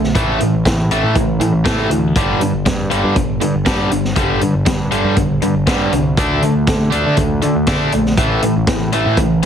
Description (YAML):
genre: indie rock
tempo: 120 BPM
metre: 4/4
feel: straight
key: unclear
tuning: A4 = 438 Hz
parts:
  - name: biting overdriven guitar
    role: riff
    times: 0.0-9.5 s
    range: G2 to D4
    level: -16 LUFS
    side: equal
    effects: none
  - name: growling picked electric bass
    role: bass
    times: 0.0-9.4 s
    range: G1 to D3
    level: -19 LUFS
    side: equal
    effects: overdrive
  - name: vintage drum kit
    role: drums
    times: 0.0-9.5 s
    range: hi-hat, kick drum, snare drum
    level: -19 LUFS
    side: equal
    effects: none
room: light reverb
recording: heavily compressed radio sound, multiband compression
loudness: -13 LUFS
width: side -8 dB against mid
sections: 0.0-9.5 A section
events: none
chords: 0.2 A5; 2.2 G5; 6.2 D5; 8.2 A5